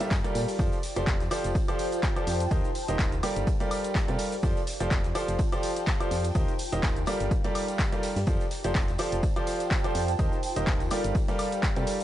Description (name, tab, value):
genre	piano house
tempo	125 BPM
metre	4/4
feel	swing 55% on 16ths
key	F major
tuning	A4 = 439 Hz
part	clear upright piano	riff	0.0-12.0 s	Eb3 to E5	-31 LUFS	right 1 dB	sidechain pumping
part	house drum kit	drums	0.0-12.0 s	handclaps, hi-hat, shaker, woodblock	-35 LUFS	left 1 dB	overdrive
part	tambourine	percussion	0.0-12.0 s	none	-46 LUFS	left 1 dB	none
part	ethereal airy pad	texture	0.0-12.0 s	F4 to A5	-35 LUFS	equal	ensemble chorus, built-in reverb, phaser, sidechain pumping
part	solid FM bass	bass	0.1-11.9 s	Eb1 to C3	-31 LUFS	equal	sidechain pumping
part	electronic kick drum	drums	0.1-11.7 s	none	-28 LUFS	equal	none
part	oversized low-tuned drum kit	drums	0.1-12.0 s	hi-hat, snare drum	-48 LUFS	right 2 dB	none
room	little or no reverb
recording	transformer saturation, nothing above 10.7 kHz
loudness	-25 LUFS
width	side -13 dB against mid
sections	0.0-12.0 A section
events	none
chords	0.0 Gm9; 0.6 F69; 2.5 Eb69; 3.2 Gm9; 4.4 F69; 6.4 Eb69; 7.1 Gm9; 8.3 F69; 10.2 Eb69; 10.9 Gm9